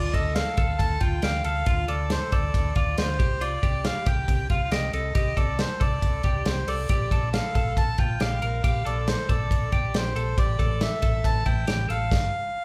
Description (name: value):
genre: jangly indie pop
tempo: 138 BPM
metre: 4/4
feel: straight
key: G minor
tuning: A4 = 440 Hz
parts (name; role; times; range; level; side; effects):
- melodica; melody; 0.0-12.6 s; C5 to A5; -32 LUFS; equal; none
- twelve-string electric guitar; arpeggios; 0.0-12.1 s; E4 to Bb4; -35 LUFS; equal; none
- hollow-body short-scale fingered electric bass; bass; 0.0-12.3 s; G1 to D2; -31 LUFS; equal; none
- modern studio drum kit; drums; 0.1-12.3 s; crash cymbal, hi-hat, kick drum, ride cymbal, snare drum; -28 LUFS; equal; none
room: moderate large studio reverb, RT60 0.9 s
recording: band playing live in one room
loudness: -25 LUFS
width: mono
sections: 0.0-12.6 A section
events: band accent 12.1-12.6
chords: 0.0 Dm; 3.2 Csus2; 6.9 Gmadd9/Bb; 10.4 A5; 12.1 G7(no3)